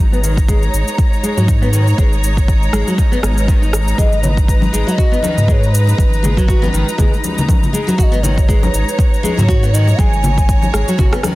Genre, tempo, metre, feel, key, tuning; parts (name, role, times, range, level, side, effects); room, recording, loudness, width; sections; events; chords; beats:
afro house; 120 BPM; 4/4; swing 56% on 16ths; G# minor; A4 = 440 Hz
dark studio string section; sustained chords; 0.0-11.3 s; G#3 to A#5; -22 LUFS; right 1 dB; sidechain pumping
nylon-string guitar; arpeggios; 0.0-11.3 s; D#3 to F#4; -21 LUFS; left 1 dB; sidechain pumping, low-pass filter, dub echo
warm sub bass; bass; 0.0-11.1 s; G#1 to G#2; -16 LUFS; equal; sidechain pumping
electronic shaker and rim click; drums; 0.1-11.3 s; -24 LUFS; equal; soft clipping on snare
electronic kick drum; drums; 0.4-11.1 s; -14 LUFS; equal; overdrive
mellow bass bansuri; melody; 4.0-11.0 s; B4 to G#5; -24 LUFS; equal; dub echo
congas; percussion; 4.0-11.3 s; -22 LUFS; left 2 dB
small room ambience; dense, heavily limited modern master; -12 LUFS; side -18 dB against mid
0.0-11.3 A section
filter sweep on nylon-string guitar 0.0-11.3
0.0 G#m7
0.49 0.99 1.49 | 1.99 2.49 2.99 3.49 | 3.99 4.49 4.99 5.49 | 5.99 6.49 6.99 7.49 | 7.99 8.49 8.99 9.49 | 9.99 10.49 10.99